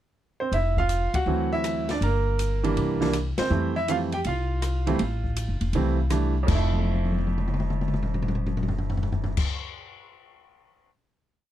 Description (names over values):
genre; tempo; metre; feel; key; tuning
jazz piano trio; 162 BPM; 4/4; swing 66% on 8ths; F major; A4 = 439 Hz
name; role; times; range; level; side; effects
clear baby grand piano; melody; 0.4-9.5 s; F2 to G5; -27 LUFS; right 3 dB; none
upright bass; bass; 0.5-9.4 s; E1 to F2; -26 LUFS; equal; none
open jazz drum kit; drums; 0.5-10.9 s; crash cymbal, hi-hat, kick drum, ride cymbal, rim click, snare drum, toms; -29 LUFS; left 2 dB; none
room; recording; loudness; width
little or no reverb; close, detailed microphones; -23 LUFS; side -12 dB against mid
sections
0.0-0.5 pickup bar; 0.5-6.5 A section; 6.5-9.4 final chord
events
band accent 1.1, 3.3; drum fill 6.7-9.3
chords
0.0 N.C.; 0.5 Esus2; 1.3 D7; 2.0 Gm; 2.8 C7; 3.5 Fmaj7